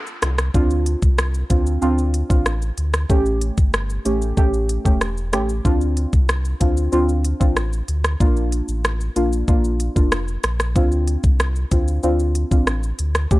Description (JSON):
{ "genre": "dancehall", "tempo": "94 BPM", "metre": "4/4", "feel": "straight", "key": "D minor", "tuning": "A4 = 440 Hz", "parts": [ { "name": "island pop drum kit", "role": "drums", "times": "0.1-13.4 s", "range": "hi-hat, kick drum, rim click, shaker", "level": "-18 LUFS", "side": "equal", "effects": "vintage 12-bit sampler grit" }, { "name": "sub bass with octave", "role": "bass", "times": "0.2-13.4 s", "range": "E1 to D2", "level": "-21 LUFS", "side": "equal", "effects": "none" }, { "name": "deep mellow chord stab", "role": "accompaniment", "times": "0.5-13.4 s", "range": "A3 to G4", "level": "-22 LUFS", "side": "equal", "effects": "chorus" } ], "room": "little or no reverb", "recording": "dry, gritty hardware recording", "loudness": "-17 LUFS", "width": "side -18 dB against mid", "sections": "0.5-13.4 A section", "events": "none", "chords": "0.0 N.C.; 0.5 Dm7; 3.1 A7; 5.7 Dm7; 8.2 Bb; 10.8 Dm7" }